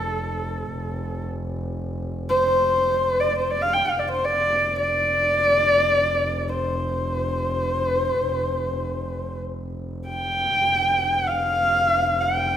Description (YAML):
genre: mongolian traditional, Mongolian folk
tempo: free time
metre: none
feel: none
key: F gong mode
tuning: A4 = 439 Hz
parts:
  - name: rich horsehead fiddle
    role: melody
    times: 0.0-12.6 s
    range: A4 to G5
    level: -20 LUFS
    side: equal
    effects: none
  - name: rich double bass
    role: drone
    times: 0.0-12.6 s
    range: F1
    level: -30 LUFS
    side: equal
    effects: none
room: moderate scoring stage reverb, RT60 1.6 s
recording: minimal, uncompressed stereo recording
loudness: -20 LUFS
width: side -10 dB against mid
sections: 0.0-12.6 A section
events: none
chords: none